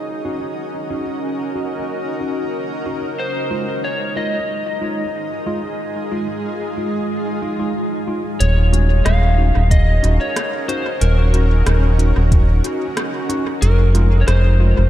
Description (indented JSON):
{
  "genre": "ambient dub",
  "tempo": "92 BPM",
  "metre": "4/4",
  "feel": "swing 54% on 16ths",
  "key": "Eb dorian",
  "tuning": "A4 = 440 Hz",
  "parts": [
    { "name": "granular cloud pad", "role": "sustained chords", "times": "0.0-14.9 s", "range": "Ab3 to Eb5", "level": "-24 LUFS", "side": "equal", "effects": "built-in reverb" },
    { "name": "tine electric piano", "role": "stabs", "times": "0.2-14.8 s", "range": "Ab3 to Gb4", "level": "-27 LUFS", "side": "equal", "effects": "medium stereo tremolo, dub echo" },
    { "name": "electric slide guitar", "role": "melody", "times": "3.2-14.9 s", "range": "Bb4 to F5", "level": "-24 LUFS", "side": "left 1 dB", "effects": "dub echo" },
    { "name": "round analog bass", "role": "bass", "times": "8.4-14.9 s", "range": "Eb1 to F1", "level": "-13 LUFS", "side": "equal", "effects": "none" },
    { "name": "organic electronic drum kit", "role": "drums", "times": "8.4-14.4 s", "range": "hi-hat, rim click", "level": "-28 LUFS", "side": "equal", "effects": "overdrive, dub echo" },
    { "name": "electronic kick drum", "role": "drums", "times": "9.7-12.5 s", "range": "none", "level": "-16 LUFS", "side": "equal", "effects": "overdrive" }
  ],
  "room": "light reverb",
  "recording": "none",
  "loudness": "-16 LUFS",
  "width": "side -13 dB against mid",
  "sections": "0.0-8.4 A section; 8.4-14.9 B section",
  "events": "none",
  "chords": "0.0 Ebm7; 3.2 Fm7; 8.4 Ebm7; 13.6 Fm7",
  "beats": "| 0.58 1.23 1.88 2.54 | 3.19 3.84 4.49 5.14 | 5.80 6.45 7.10 7.75 | 8.40 9.06 9.71 10.36 | 11.01 11.67 12.32 12.97 | 13.62 14.28"
}